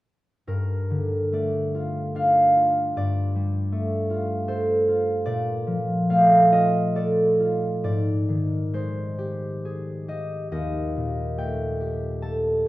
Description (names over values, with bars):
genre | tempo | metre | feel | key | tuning
classical, solo harp piece | 65-80 BPM | 3/4 | rubato | G minor | A4 = 440 Hz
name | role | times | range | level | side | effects
concert harp | solo | 0.5-12.7 s | Eb2 to A5 | -21 LUFS | equal | none
room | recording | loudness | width
wet recital hall reverb, RT60 1.6 s | dark, warm production | -21 LUFS | side -17 dB against mid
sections
0.5-12.7 A section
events
none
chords
0.5 Gm9; 2.9 Fadd9/G; 5.3 Bbmaj7; 7.8 Abmaj7; 10.5 Ebmaj7#11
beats
| 0.47 1.32 2.14 | 2.95 3.72 4.48 | 5.26 6.08 6.93 | 7.82 8.72 9.61 | 10.51 11.38 12.23